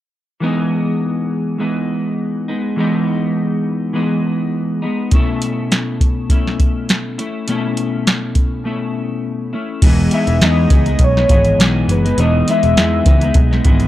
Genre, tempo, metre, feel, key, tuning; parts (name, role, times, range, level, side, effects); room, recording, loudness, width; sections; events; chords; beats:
indie pop, bedroom pop; 102 BPM; 4/4; swing 55% on 16ths; E major; A4 = 441 Hz
clean electric guitar; accompaniment; 0.4-13.9 s; B2 to E4; -18 LUFS; left 1 dB; analog chorus, warbly pitch drift
soft vintage rhythm box; drums; 5.1-13.9 s; crash cymbal, hi-hat, kick drum, snare drum; -14 LUFS; equal
vintage muted picked electric bass; bass; 9.8-13.9 s; E1 to E2; -16 LUFS; equal
soft octave-layered synth lead; melody; 10.1-13.4 s; B4 to E5; -18 LUFS; left 2 dB; lush chorus, tape echo
digital ambience; dry, gritty hardware recording, transformer saturation; -14 LUFS; side -14 dB against mid
0.4-9.8 A section; 9.8-13.9 B section
break 8.7-9.8
0.4 Emaj7; 5.1 B9sus4; 9.8 Emaj7
| 0.41 1.00 1.59 2.18 | 2.77 3.36 3.94 4.53 | 5.12 5.71 6.30 6.89 | 7.47 8.06 8.65 9.24 | 9.83 10.41 11.00 11.59 | 12.18 12.77 13.36